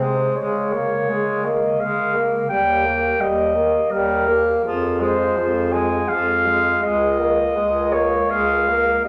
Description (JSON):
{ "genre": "classical, lyrical piece for single-reed quartet", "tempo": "83 BPM", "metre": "3/4", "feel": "uneven beats, rubato", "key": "unclear", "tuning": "A4 = 440 Hz", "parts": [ { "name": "mellow clarinet", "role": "melody", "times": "0.0-9.1 s", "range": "Bb4 to Ab5", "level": "-22 LUFS", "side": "equal", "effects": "none" }, { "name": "mellow alto saxophone", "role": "second line", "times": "0.0-9.1 s", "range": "F4 to C5", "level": "-31 LUFS", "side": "equal", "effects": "none" }, { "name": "clear tenor saxophone", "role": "accompaniment", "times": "0.0-9.1 s", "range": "F3 to Bb3", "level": "-24 LUFS", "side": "equal", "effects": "none" }, { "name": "clear bass clarinet", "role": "bass", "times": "0.0-9.1 s", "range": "Db2 to Db3", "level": "-29 LUFS", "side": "equal", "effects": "none" } ], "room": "wet recital hall reverb, RT60 1.6 s", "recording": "none", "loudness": "-19 LUFS", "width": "mono", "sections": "0.0-9.1 A section", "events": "none", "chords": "0.4 Bbm7/Db; 2.5 Eb; 4.6 Fm; 6.8 Bbm7/Db" }